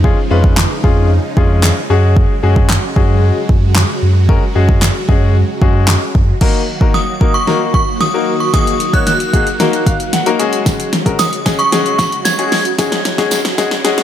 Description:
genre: dance-pop.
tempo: 113 BPM.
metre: 4/4.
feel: straight.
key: Eb minor.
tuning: A4 = 440 Hz.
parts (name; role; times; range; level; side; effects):
clear concert grand piano; accompaniment; 0.0-14.0 s; Ab3 to Ab5; -18 LUFS; left 5 dB; none.
supersaw chords; sustained chords; 0.0-14.0 s; Db3 to Gb4; -22 LUFS; right 1 dB; phaser, sidechain pumping.
sub bass with octave; bass; 0.0-6.3 s; F2 to Gb2; -12 LUFS; equal; sidechain pumping.
deep house drum kit; drums; 0.0-14.0 s; crash cymbal, handclaps, hi-hat, kick drum, snare drum; -14 LUFS; equal; none.
synth chime; melody; 6.9-14.0 s; Db6 to Ab6; -17 LUFS; right 1 dB; ensemble chorus, tremolo, ping-pong delay.
tambourine; percussion; 10.7-13.7 s; none; -27 LUFS; right 6 dB; none.
room: little or no reverb.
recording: high-pass filter.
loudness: -11 LUFS.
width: side -11 dB against mid.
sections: 0.0-6.4 A section; 6.4-14.0 B section.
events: build-up 6.4-14.0; drum fill 6.4-14.0; filter sweep 6.4-14.0; grand piano fill 9.6-10.7, 13.8.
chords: 0.0 Db/F; 1.9 Gbsus2; 6.4 Ebm; 10.4 Gbsus2.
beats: | 0.04 0.57 1.10 1.64 | 2.17 2.70 3.23 3.76 | 4.29 4.82 5.35 5.88 | 6.41 6.94 7.47 8.01 | 8.54 9.07 9.60 10.13 | 10.66 11.19 11.72 12.25 | 12.79 13.32 13.85.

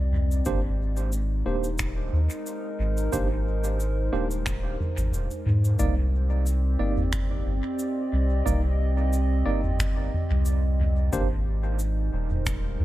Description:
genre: ambient dub.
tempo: 90 BPM.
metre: 4/4.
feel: swing 54% on 16ths.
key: C minor.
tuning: A4 = 440 Hz.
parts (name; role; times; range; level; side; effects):
warbly tape-like pad; sustained chords; 0.0-12.8 s; Ab3 to Eb5; -32 LUFS; equal; chorus, built-in reverb.
soft dub sub bass; bass; 0.0-12.8 s; Eb1 to Ab2; -24 LUFS; equal; none.
soft-mallet drum kit; drums; 0.1-12.6 s; cabasa, finger snaps, toms; -32 LUFS; equal; dub echo.
tine electric piano; stabs; 0.5-11.3 s; Bb3 to D5; -33 LUFS; right 3 dB; medium stereo tremolo, dub echo.
electronic kick drum; drums; 0.5-12.6 s; none; -31 LUFS; equal; none.
room: small room ambience.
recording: none.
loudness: -23 LUFS.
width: side -15 dB against mid.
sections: 0.0-5.8 A section; 5.8-12.8 B section.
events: none.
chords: 0.5 Abmaj9#11; 5.8 Cm9; 11.1 Abmaj9#11.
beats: | 0.46 1.13 1.80 2.46 | 3.13 3.80 4.46 5.13 | 5.80 6.46 7.13 7.80 | 8.46 9.13 9.80 10.46 | 11.13 11.80 12.46.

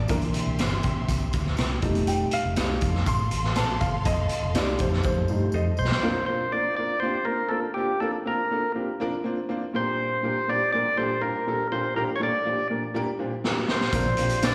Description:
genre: uptempo 1960s-style soul.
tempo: 121 BPM.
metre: 4/4.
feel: straight.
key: Bb major.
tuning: A4 = 440 Hz.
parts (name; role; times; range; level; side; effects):
warm studio string section; second line; 0.0-5.8, 13.9-14.5 s; F4 to C6; -38 LUFS; equal; slapback echo.
clear concert grand piano; accompaniment; 0.0-14.5 s; Bb2 to C6; -30 LUFS; equal; slapback echo.
vintage muted fingered electric bass; bass; 0.0-5.9, 13.9-14.5 s; F1 to C3; -29 LUFS; equal; none.
raw garage drum kit; drums; 0.1-6.0, 13.4-14.5 s; hi-hat, kick drum, snare drum; -30 LUFS; equal; none.
tambourine; percussion; 0.1-5.9, 13.9-14.5 s; none; -49 LUFS; equal; none.
clean electric guitar; stabs; 0.6-5.7, 14.4-14.5 s; D4 to C5; -38 LUFS; equal; none.
percussive tonewheel organ; melody; 5.8-14.5 s; G4 to D5; -28 LUFS; equal; overdrive, slapback echo.
room: light reverb, small room ambience.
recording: live gig heard through the venue's PA, recital hall reverb.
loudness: -26 LUFS.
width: mono.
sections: 0.0-6.0 A section; 6.0-14.5 B section.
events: grand piano solo 0.0-6.0; drum fill 5.0-6.0, 13.4-13.9.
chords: 0.1 C7; 1.8 F7; 6.0 Bbadd9; 9.7 Gm/Bb; 13.9 Bbadd9.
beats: | 0.10 0.59 1.09 1.58 | 2.08 2.57 3.07 3.56 | 4.06 4.55 5.04 5.54 | 6.03 6.53 7.02 7.51 | 8.01 8.50 8.99 9.49 | 9.98 10.47 10.97 11.46 | 11.96 12.45 12.94 13.44 | 13.93 14.43.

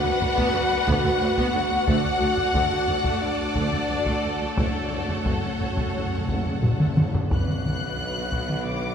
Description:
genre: cinematic, epic orchestral film score.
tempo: 89 BPM.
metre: 4/4.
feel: straight.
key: B minor.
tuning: A4 = 440 Hz.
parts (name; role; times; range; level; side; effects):
rich symphonic violin section; melody; 0.0-8.9 s; C#5 to F#6; -32 LUFS; left 4 dB; none.
mellow hollow concert flute; second line; 0.0-7.0 s; C#5 to F#5; -31 LUFS; left 5 dB; none.
warm symphonic violin section; second line; 0.0-8.9 s; B4 to F#5; -33 LUFS; left 2 dB; none.
warm symphonic viola section; accompaniment; 0.0-8.9 s; C#3 to F#4; -32 LUFS; right 1 dB; none.
mellow French horn section; sustained chords; 0.0-8.9 s; D3 to F#4; -30 LUFS; right 1 dB; none.
rich symphonic string section; sustained chords; 0.0-8.9 s; A3 to F#5; -30 LUFS; right 1 dB; none.
warm symphonic cello section; bass; 0.0-8.9 s; D2 to B2; -34 LUFS; right 2 dB; none.
clear tuba; bass; 0.2-8.9 s; F#1 to D2; -35 LUFS; right 2 dB; none.
warm symphonic double bass section; bass; 0.2-8.9 s; F#1 to D2; -33 LUFS; right 2 dB; none.
solo taiko drums; drums; 0.2-8.9 s; none; -27 LUFS; equal; none.
timpani; percussion; 4.6-8.3 s; F#2 to B2; -32 LUFS; left 1 dB; none.
room: wet recital hall reverb, RT60 1.7 s.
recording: recorded in a church or concert hall.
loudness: -21 LUFS.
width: side -7 dB against mid.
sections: 0.0-7.3 A section; 7.3-8.9 B section.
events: timpani fill 4.6-7.3; drum fill 6.6-7.3.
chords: 0.0 Bm/D; 1.9 D; 4.6 F#m; 7.3 Bmadd9.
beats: 0.54 1.21 | 1.87 2.54 3.21 3.89 | 4.57 5.26 5.94 6.63 | 7.31 7.99 8.66.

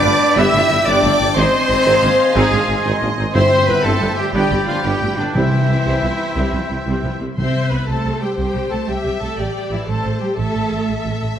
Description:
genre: cinematic.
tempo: 120 BPM (dotted quarters).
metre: 12/8.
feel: straight.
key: C major.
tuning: A4 = 440 Hz.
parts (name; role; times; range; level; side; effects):
warm symphonic violin section; melody; 0.0-11.4 s; C5 to E6; -25 LUFS; left 4 dB; none.
clear oboe; second line; 0.0-7.2 s; G5 to Ab5; -27 LUFS; equal; none.
mellow clarinet; second line; 0.0-7.2 s; D5 to E5; -28 LUFS; equal; none.
rich symphonic violin section; second line; 0.0-11.2 s; G4 to C6; -30 LUFS; left 3 dB; none.
small flute group; second line; 0.0-7.2 s; B5 to C6; -30 LUFS; right 3 dB; none.
warm studio viola section; accompaniment; 0.0-11.2 s; F3 to C5; -24 LUFS; left 1 dB; none.
mellow French horn section; sustained chords; 0.0-7.2 s; D3 to E4; -23 LUFS; left 4 dB; none.
bright trumpet section; stabs; 0.0-7.2 s; D4 to E5; -21 LUFS; equal; none.
mellow tuba; bass; 0.0-7.3 s; G1 to C2; -24 LUFS; right 2 dB; none.
rich symphonic cello section; bass; 0.0-11.2 s; E3 to E5; -21 LUFS; right 2 dB; none.
warm studio double bass section; bass; 0.0-11.3 s; G1 to C2; -23 LUFS; right 2 dB; none.
timpani; percussion; 3.3-7.8 s; G2 to C3; -22 LUFS; left 1 dB; none.
room: wet scoring stage reverb, RT60 1.9 s.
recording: none.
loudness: -14 LUFS.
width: side -9 dB against mid.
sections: 0.0-7.4 A section; 7.4-11.4 B section.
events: none.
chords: 0.0 G; 1.4 Ab; 3.4 C/G; 4.3 G; 5.3 C; 9.4 Am7.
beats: 0.37 0.87 | 1.36 1.86 2.36 2.85 | 3.35 3.85 4.34 4.84 | 5.35 5.86 6.37 6.87 | 7.38 7.88 8.38 8.88 | 9.38 9.88 10.38 10.88 | 11.38.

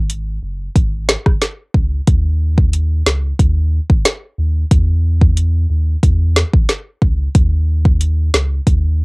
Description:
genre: dancehall.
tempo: 91 BPM.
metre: 4/4.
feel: straight.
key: unclear.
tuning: A4 = 440 Hz.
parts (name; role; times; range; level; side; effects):
round analog bass; bass; 0.0-9.0 s; Gb1 to Fb2; -15 LUFS; equal; none.
afro-pop drum kit; drums; 0.1-8.8 s; hi-hat, kick drum, rim click, snare drum; -13 LUFS; equal; cassette tape.
room: little or no reverb.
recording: home recording on cassette.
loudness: -13 LUFS.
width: side -36 dB against mid.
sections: 0.0-9.0 A section.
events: none.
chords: none.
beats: 0.10 0.76 1.42 | 2.08 2.73 3.39 4.05 | 4.71 5.37 6.03 6.69 | 7.35 8.01 8.67.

